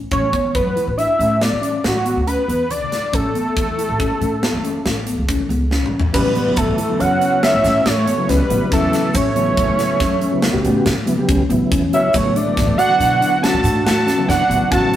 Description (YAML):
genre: progressive instrumental, band music in an uneven meter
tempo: 140 BPM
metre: 7/4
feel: straight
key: A mixolydian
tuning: A4 = 440 Hz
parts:
  - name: upright bass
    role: bass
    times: 0.0-14.9 s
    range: F#1 to B2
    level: -22 LUFS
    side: equal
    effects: none
  - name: fat analog lead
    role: melody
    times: 0.1-15.0 s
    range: F#4 to A5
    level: -18 LUFS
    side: right 1 dB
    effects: chorus
  - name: mellow tine electric piano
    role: arpeggios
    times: 0.1-15.0 s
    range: C#3 to F#4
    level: -23 LUFS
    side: left 3 dB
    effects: medium stereo tremolo
  - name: tight metal drum kit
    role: drums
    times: 0.1-15.0 s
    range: crash cymbal, hi-hat, kick drum, snare drum, toms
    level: -22 LUFS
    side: equal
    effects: none
  - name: mellow tonewheel organ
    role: accompaniment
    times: 6.1-15.0 s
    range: C#3 to G4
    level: -22 LUFS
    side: equal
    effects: chorus vibrato
  - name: tube shaker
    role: percussion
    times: 6.1-14.2 s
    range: none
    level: -36 LUFS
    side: right 3 dB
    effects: none
  - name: clear alto saxophone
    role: second line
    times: 6.2-15.0 s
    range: E3 to F#4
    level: -23 LUFS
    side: equal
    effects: none
room: moderate stone room reverb, RT60 1.4 s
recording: rough rehearsal-room recording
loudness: -15 LUFS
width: side -12 dB against mid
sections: 0.0-6.1 A section; 6.1-15.0 B section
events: drum fill 5.7-6.1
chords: 0.1 Bm/A; 3.1 Aadd9; 6.1 A; 12.1 D/A